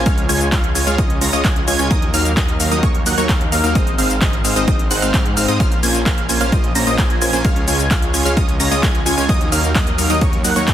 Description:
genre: EDM, festival progressive house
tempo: 130 BPM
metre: 4/4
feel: straight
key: unclear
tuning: A4 = 439 Hz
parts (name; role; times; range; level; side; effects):
- wide unison pluck; arpeggios; 0.0-10.7 s; Db6 to Bb6; -23 LUFS; right 1 dB; phaser, sidechain pumping, tape echo
- supersaw stab; riff; 0.0-10.7 s; Gb3 to Bb5; -19 LUFS; equal; sidechain pumping, tape echo
- detuned saw bass; bass; 0.0-10.7 s; Ab1 to Ab2; -22 LUFS; equal; sidechain pumping
- big-room dance drum kit; drums; 0.1-10.7 s; handclaps, hi-hat, shaker; -22 LUFS; left 1 dB; overdrive
- electronic kick drum; drums; 0.1-10.7 s; none; -17 LUFS; equal; overdrive
room: little or no reverb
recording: dense, heavily limited modern master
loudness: -14 LUFS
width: side -11 dB against mid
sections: 0.0-10.7 A section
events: none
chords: 0.1 Db; 1.9 Ebm; 3.8 Ab; 5.6 Bbmadd9; 7.4 Db; 9.3 Ebm

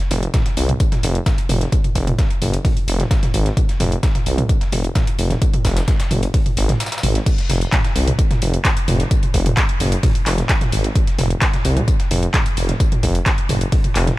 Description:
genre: driving peak-time techno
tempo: 130 BPM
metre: 4/4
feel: straight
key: unclear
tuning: A4 = 441 Hz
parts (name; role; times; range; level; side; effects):
- techno drum kit; drums; 0.0-14.2 s; crash cymbal, handclaps, hi-hat, toms; -22 LUFS; right 1 dB; sidechain pumping on hats, sidechain pumping on toms, sidechain pumping on cymbals
- detuned saw bass; bass; 0.1-14.1 s; F1 to C2; -18 LUFS; equal; sidechain pumping
- dusty soul sampler-style drum kit; drums; 0.1-14.2 s; hi-hat, snare drum, tambourine; -32 LUFS; left 1 dB; sidechain pumping on perc, high-pass filter on perc, high-pass filter on snare, sidechain pumping on hats, high-pass filter on hats, high-pass filter on room
- electronic kick drum; drums; 0.3-13.8 s; none; -18 LUFS; equal; none
room: little or no reverb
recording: none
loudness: -15 LUFS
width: side -18 dB against mid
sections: 0.0-14.2 A section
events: break 6.8-7.3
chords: none

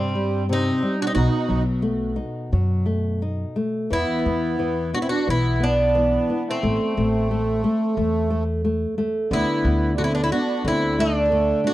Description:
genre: fado-style ballad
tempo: 89 BPM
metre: 4/4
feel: rubato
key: unclear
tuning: A4 = 439 Hz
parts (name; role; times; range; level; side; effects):
- Irish bouzouki; melody; 0.0-11.7 s; C4 to F#4; -24 LUFS; right 1 dB; tape echo
- musette accordion; second line; 0.0-11.7 s; G3 to Eb4; -26 LUFS; right 3 dB; none
- nylon-string guitar; accompaniment; 0.0-11.7 s; B2 to D#4; -24 LUFS; left 2 dB; none
- upright bass; bass; 0.0-11.5 s; A1 to G2; -24 LUFS; equal; none
room: small room reverb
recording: dry, close 1970s-style studio recording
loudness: -19 LUFS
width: side -15 dB against mid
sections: 0.0-11.7 A section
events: none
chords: 0.0 C5; 1.2 B7; 3.9 E5; 6.6 Am; 9.3 D69; 10.6 D5

